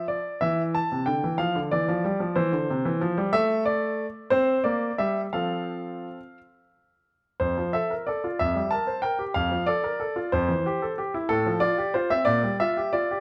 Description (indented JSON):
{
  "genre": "classical-period piano sonatina",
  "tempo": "61 BPM (dotted quarters)",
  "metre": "6/8",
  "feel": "rubato",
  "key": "F major",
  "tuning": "A4 = 440 Hz",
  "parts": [
    { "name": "clear grand piano", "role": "solo", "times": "0.0-13.2 s", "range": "F2 to A5", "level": "-26 LUFS", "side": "equal", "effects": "none" }
  ],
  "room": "light reverb",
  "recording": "close, detailed microphones",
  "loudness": "-26 LUFS",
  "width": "mono",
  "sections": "0.0-7.4 A section; 7.4-13.2 B section",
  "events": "none",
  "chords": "0.4 C/E; 1.4 Dmadd9; 2.4 C; 3.3 N.C.; 4.3 C5; 5.3 F; 8.4 C5/F; 9.4 F; 10.3 C/F; 11.3 F/A; 12.3 Gm7/Bb"
}